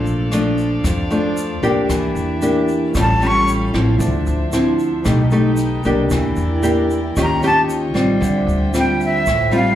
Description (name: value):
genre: bossa nova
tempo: 114 BPM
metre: 4/4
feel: straight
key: D minor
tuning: A4 = 440 Hz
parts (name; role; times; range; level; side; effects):
- nylon-string guitar; accompaniment; 0.0-9.8 s; F2 to G4; -17 LUFS; equal; slapback echo
- warm chamber string section; sustained chords; 0.0-9.8 s; C#4 to G5; -26 LUFS; equal; none
- upright bass; bass; 0.0-9.8 s; A1 to F2; -23 LUFS; equal; none
- jazz brush drum kit; drums; 0.0-9.7 s; hi-hat, kick drum, rim click; -26 LUFS; equal; none
- egg shaker; percussion; 0.1-9.8 s; none; -37 LUFS; right 2 dB; none
- breathy bright jazz flute; melody; 3.0-3.5, 7.2-9.8 s; E5 to C#6; -17 LUFS; equal; slapback echo
room: moderate club reverb, RT60 0.7 s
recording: live gig heard through the venue's PA, club reverb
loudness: -15 LUFS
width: side -12 dB against mid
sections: 0.0-9.8 A section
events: flute solo 0.0-9.8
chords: 0.0 Bbmaj7; 1.9 Em7b5; 3.0 A7b13; 4.0 Dm9; 5.1 B7alt; 6.1 Em7b5; 7.2 Eb9; 8.2 Dm11